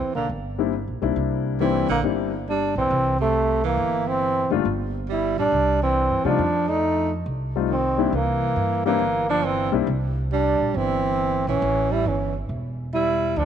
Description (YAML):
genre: jazz, small-group swing and bop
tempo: 138 BPM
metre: 4/4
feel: swing 66% on 8ths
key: C mixolydian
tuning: A4 = 441 Hz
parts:
  - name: clear trombone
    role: melody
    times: 0.0-13.4 s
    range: A3 to E4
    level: -23 LUFS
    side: equal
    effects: none
  - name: breathy tenor saxophone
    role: second line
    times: 0.0-13.4 s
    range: C3 to A3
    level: -28 LUFS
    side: right 12 dB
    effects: none
  - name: upright bass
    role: bass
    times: 0.0-13.4 s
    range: E1 to C3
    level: -27 LUFS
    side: right 1 dB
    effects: none
  - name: warm grand piano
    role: accompaniment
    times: 0.6-9.9 s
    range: G3 to F4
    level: -25 LUFS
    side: left 12 dB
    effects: none
room: moderate plate reverb, RT60 2.5 s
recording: 1960s-style stereo with parts hard left and right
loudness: -20 LUFS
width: side -8 dB against mid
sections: 0.0-13.4 A section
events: none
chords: 0.0 C7; 4.7 Gm; 5.5 C; 6.4 F7; 8.1 C7; 11.6 A5